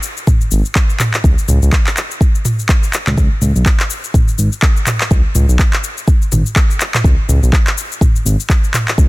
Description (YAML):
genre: afro house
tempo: 124 BPM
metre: 4/4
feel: swing 57% on 16ths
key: unclear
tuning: A4 = 440 Hz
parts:
  - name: afro-pop drum kit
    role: drums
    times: 0.0-9.1 s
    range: handclaps, shaker, toms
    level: -17 LUFS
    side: equal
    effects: none
  - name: electronic kick drum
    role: drums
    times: 0.3-9.1 s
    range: none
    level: -12 LUFS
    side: equal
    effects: none
  - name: smooth synth bass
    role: bass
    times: 0.5-9.1 s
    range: G#1 to C#2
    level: -13 LUFS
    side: equal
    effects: tube saturation, sidechain pumping
room: digital ambience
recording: dense, heavily limited modern master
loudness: -11 LUFS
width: side -21 dB against mid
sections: 0.0-9.1 A section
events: none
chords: none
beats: 0.27 0.75 | 1.24 1.72 2.21 2.69 | 3.17 3.66 4.14 4.62 | 5.11 5.59 6.08 6.56 | 7.04 7.53 8.01 8.50 | 8.98